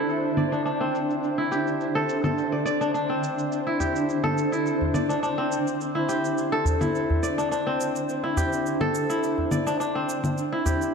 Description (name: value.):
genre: organic downtempo.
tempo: 105 BPM.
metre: 4/4.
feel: swing 53% on 16ths.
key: unclear.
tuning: A4 = 440 Hz.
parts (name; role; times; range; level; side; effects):
granular cloud pad; sustained chords; 0.0-10.9 s; D4 to E5; -28 LUFS; right 1 dB; built-in reverb.
kora; arpeggios; 0.0-10.9 s; C4 to D5; -25 LUFS; left 1 dB; low-pass filter, digital delay.
shaker and congas; drums; 0.1-10.9 s; none; -31 LUFS; left 1 dB; low-pass filter on perc, small room ambience.
udu; percussion; 3.8-10.8 s; none; -27 LUFS; equal; none.
room: wet lush hall reverb, RT60 2.1 s.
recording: dark, warm production.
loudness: -23 LUFS.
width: side -5 dB against mid.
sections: 0.0-10.9 A section.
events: filter sweep on drum 0.0-10.9.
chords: 0.0 D7sus2.